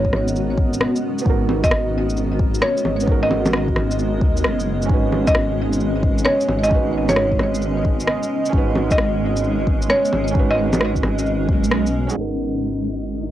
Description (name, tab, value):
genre	future garage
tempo	132 BPM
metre	4/4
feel	swing 67% on 16ths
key	G# minor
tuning	A4 = 440 Hz
part	buzzing marimba with hard mallets	melody	0.0-11.1 s	C#5 to D#5	-23 LUFS	equal	cassette tape, tape echo
part	felt-muted upright piano	accompaniment	0.0-13.3 s	B3 to B4	-27 LUFS	right 7 dB	sidechain pumping, cassette tape, tape echo
part	granular cloud pad	sustained chords	0.0-13.3 s	G#3 to D#5	-23 LUFS	equal	built-in reverb, sidechain pumping, cassette tape
part	dark detuned saw bass	bass	0.0-13.3 s	F#1 to D#2	-23 LUFS	equal	tube saturation, sidechain pumping
part	electronic kick drum	drums	0.0-11.6 s	none	-20 LUFS	equal	none
part	electronic rim click, bongos and shaker	drums	0.1-12.2 s	none	-22 LUFS	equal	low-pass filter on perc, low-pass filter on snare
part	flickering grainy texture	texture	12.7-13.3 s	D#4 to D#5	-34 LUFS	left 3 dB	built-in reverb, cassette tape
room	light reverb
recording	home recording on cassette, low-pass filter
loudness	-17 LUFS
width	side -12 dB against mid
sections	0.0-12.2 A section; 12.2-13.3 B section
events	band accent 11.7; filter sweep on ambient pad 12.2-13.3; filter sweep 12.2-13.3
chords	0.0 G#m7; 4.9 Badd9/G#; 12.2 G#m7